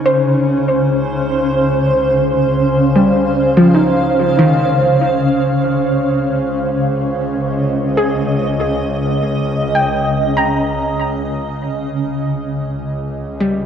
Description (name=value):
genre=ambient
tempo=72 BPM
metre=4/4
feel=straight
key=Db lydian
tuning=A4 = 440 Hz
part: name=granular cloud pad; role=sustained chords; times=0.0-13.7 s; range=Db3 to Ab5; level=-15 LUFS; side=equal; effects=built-in reverb, shimmer reverb
part: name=clear chamber double bass section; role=bass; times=0.0-13.7 s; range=Db2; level=-25 LUFS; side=equal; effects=none
part: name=soft round pluck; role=arpeggios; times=0.1-13.7 s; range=Eb3 to Bb5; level=-16 LUFS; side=equal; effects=wide subtle chorus, tape echo, shimmer reverb
room=wet spring reverb, RT60 2.5 s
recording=echo-heavy mix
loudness=-13 LUFS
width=side -8 dB against mid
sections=0.0-13.7 A section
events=fade-in on double bass section 0.0-13.7; fade-out 9.9-13.7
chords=0.0 Dbmaj9#11; 5.4 Dbsus2; 12.1 Bbm/Db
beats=0.42 1.25 | 2.08 2.92 3.75 4.58 | 5.42 6.25 7.08 7.92 | 8.75 9.59 10.42 11.25 | 12.09 12.92